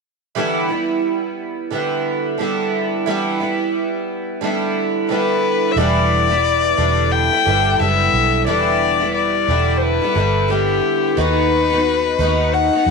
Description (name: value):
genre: acoustic pop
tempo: 89 BPM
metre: 4/4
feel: swing 60% on 16ths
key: E minor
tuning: A4 = 440 Hz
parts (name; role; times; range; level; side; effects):
- picked twelve-string acoustic guitar; accompaniment; 0.3-12.9 s; D3 to F#4; -19 LUFS; right 2 dB; double-tracked left and right
- warm violin; melody; 5.1-12.9 s; G4 to G5; -17 LUFS; left 7 dB; none
- vintage muted fingered electric bass; bass; 5.8-12.9 s; E1 to F#2; -21 LUFS; right 2 dB; none
room: moderate echo chamber reverb, RT60 1.4 s, small room ambience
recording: none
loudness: -15 LUFS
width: side -4 dB against mid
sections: 0.4-5.8 A section; 5.8-12.9 B section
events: none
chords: 0.4 Em7; 11.2 B/D#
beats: | 0.35 1.03 1.71 2.38 | 3.06 3.74 4.42 5.09 | 5.77 6.44 7.12 7.80 | 8.47 9.15 9.82 10.50 | 11.18 11.85 12.53